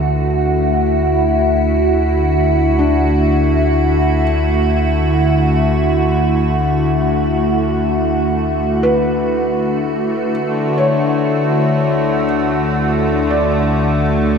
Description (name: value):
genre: ambient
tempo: free time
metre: none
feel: none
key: D major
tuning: A4 = 439 Hz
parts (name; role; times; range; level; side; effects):
- evolving wavetable pad; sustained chords; 0.0-14.4 s; D3 to F#4; -15 LUFS; equal; chorus, built-in reverb, shimmer reverb
- felt-muted upright piano; arpeggios; 0.0-14.4 s; D4 to D5; -23 LUFS; left 1 dB; tape echo, shimmer reverb
- deep rumbling drone; bass; 0.0-14.4 s; D2; -20 LUFS; equal; built-in reverb, tube saturation
- hand-pumped harmonium; drone; 10.4-14.4 s; D3 to A3; -20 LUFS; left 3 dB; none
room: wet lush hall reverb, RT60 3.2 s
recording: none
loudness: -13 LUFS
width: side -6 dB against mid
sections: 0.0-14.4 A section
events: none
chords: 0.0 Dmaj7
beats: free time